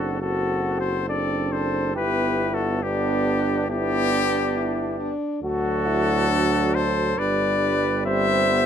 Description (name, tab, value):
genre	classical, brass quintet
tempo	69 BPM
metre	4/4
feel	straight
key	G major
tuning	A4 = 442 Hz
part	mellow trumpet	melody	0.0-8.7 s	G4 to E5	-25 LUFS	left 7 dB	none
part	mellow flugelhorn	second line	0.0-8.7 s	D4 to C5	-27 LUFS	right 6 dB	none
part	mellow trombone	accompaniment	0.0-8.7 s	F#3 to C4	-29 LUFS	right 2 dB	none
part	warm French horn	accompaniment	0.0-8.7 s	B3 to F#4	-28 LUFS	left 1 dB	none
part	mellow bass trombone	bass	0.0-8.7 s	F#1 to D2	-27 LUFS	right 1 dB	none
room	light reverb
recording	none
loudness	-20 LUFS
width	side -8 dB against mid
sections	0.0-8.7 A section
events	none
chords	0.0 D7/F#; 2.0 G; 5.4 D; 7.2 G